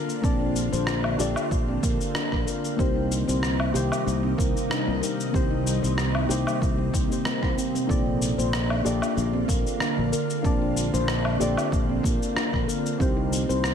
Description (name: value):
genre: organic downtempo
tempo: 94 BPM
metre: 4/4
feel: swing 54% on 16ths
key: unclear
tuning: A4 = 438 Hz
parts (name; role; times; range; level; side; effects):
- muted felt-like synth keys; accompaniment; 0.0-13.7 s; Eb3 to A5; -30 LUFS; left 4 dB; chorus, sidechain pumping, tape echo
- ethereal airy pad; sustained chords; 0.0-13.7 s; C3 to F4; -31 LUFS; equal; ensemble chorus, built-in reverb, sidechain pumping
- handpan; arpeggios; 0.0-13.6 s; Bb3 to C5; -30 LUFS; right 2 dB; tape echo
- electronic cabasa, rim click and woodblock; drums; 0.1-13.7 s; none; -30 LUFS; left 1 dB; none
- sustaining fretless electric bass; bass; 0.2-13.7 s; Bb1 to C2; -27 LUFS; equal; wide subtle chorus, sidechain pumping
- electronic kick drum; drums; 0.2-13.1 s; none; -26 LUFS; equal; overdrive
room: light reverb, digital ambience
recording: none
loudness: -22 LUFS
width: side -8 dB against mid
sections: 0.0-13.7 A section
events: none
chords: 0.0 Bbmaj7; 2.8 Cm7; 7.9 Bbmaj7; 13.0 Cm7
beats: | 0.23 0.87 1.51 2.15 | 2.79 3.43 4.07 4.70 | 5.34 5.98 6.62 7.26 | 7.89 8.53 9.17 9.81 | 10.45 11.09 11.72 12.36 | 13.00 13.64